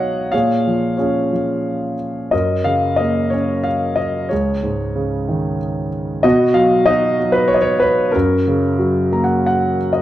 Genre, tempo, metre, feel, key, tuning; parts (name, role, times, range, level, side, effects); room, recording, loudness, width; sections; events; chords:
classical, lyrical solo piano; 92 BPM; 3/4; rubato; F# major; A4 = 440 Hz
warm concert grand piano; solo; 0.0-10.0 s; C#2 to A#5; -15 LUFS; equal
moderate recital hall reverb, RT60 1.4 s; dark, warm production; -15 LUFS; side -13 dB against mid
0.0-10.0 A section
grand piano fill 8.8-10.0
0.3 A#m7; 2.3 F#; 4.3 C#sus2; 6.2 B; 8.1 F#